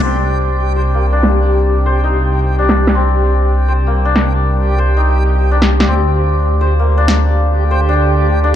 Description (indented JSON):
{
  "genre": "half-time drum and bass",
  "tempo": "164 BPM",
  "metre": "4/4",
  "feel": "swing 58% on 16ths, half-time",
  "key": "unclear",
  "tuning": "A4 = 440 Hz",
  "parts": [
    { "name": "dark analog pad", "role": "sustained chords", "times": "0.0-8.6 s", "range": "C4 to F5", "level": "-28 LUFS", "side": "equal", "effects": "none" },
    { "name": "santur", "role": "arpeggios", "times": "0.0-8.6 s", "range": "Bb3 to C5", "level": "-18 LUFS", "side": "left 3 dB", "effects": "low-pass filter, dub echo" },
    { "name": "dark detuned saw bass", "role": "bass", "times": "0.0-8.6 s", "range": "C2 to D2", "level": "-13 LUFS", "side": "equal", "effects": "none" },
    { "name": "drum and bass drum kit", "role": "drums", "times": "0.0-7.1 s", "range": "crash cymbal, snare drum", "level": "-16 LUFS", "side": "equal", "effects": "overdrive, low-pass filter on snare, low-pass filter on hats, low-pass filter on perc, low-pass filter on cymbals, low-pass filter on room" },
    { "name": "backwards swelling texture", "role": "texture", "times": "0.0-8.6 s", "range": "G4", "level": "-21 LUFS", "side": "equal", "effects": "built-in reverb" }
  ],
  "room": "light reverb",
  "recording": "echo-heavy mix",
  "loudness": "-11 LUFS",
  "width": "side -10 dB against mid",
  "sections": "0.0-8.6 A section",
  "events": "filter sweep on drum 0.0-8.6",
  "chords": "0.0 Cm7; 5.9 Dm"
}